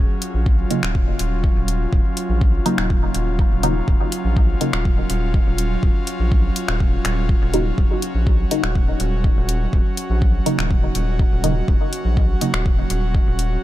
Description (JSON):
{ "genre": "dub techno", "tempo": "123 BPM", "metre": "4/4", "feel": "straight", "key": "Eb minor", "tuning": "A4 = 440 Hz", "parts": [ { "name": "airy breathy pad", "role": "sustained chords", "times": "0.0-13.6 s", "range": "Gb3 to Gb4", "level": "-26 LUFS", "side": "right 1 dB", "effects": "chorus, sidechain pumping" }, { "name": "round analog bass", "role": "bass", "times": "0.0-13.6 s", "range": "Eb1 to Bb1", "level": "-21 LUFS", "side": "equal", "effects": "sidechain pumping" }, { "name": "deep house drum kit", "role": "drums", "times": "0.2-13.5 s", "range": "finger snaps, hi-hat", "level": "-27 LUFS", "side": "left 2 dB", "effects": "dub echo" }, { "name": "electronic kick drum", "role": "drums", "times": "0.5-13.2 s", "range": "none", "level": "-18 LUFS", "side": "equal", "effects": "none" }, { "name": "filtered dub chord stab", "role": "stabs", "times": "0.7-12.5 s", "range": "Db3 to Eb4", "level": "-25 LUFS", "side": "equal", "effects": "phaser, sidechain pumping, dub echo" } ], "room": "little or no reverb", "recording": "none", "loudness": "-16 LUFS", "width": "side -14 dB against mid", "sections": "0.0-13.6 A section", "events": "none", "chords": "0.0 Ebm7" }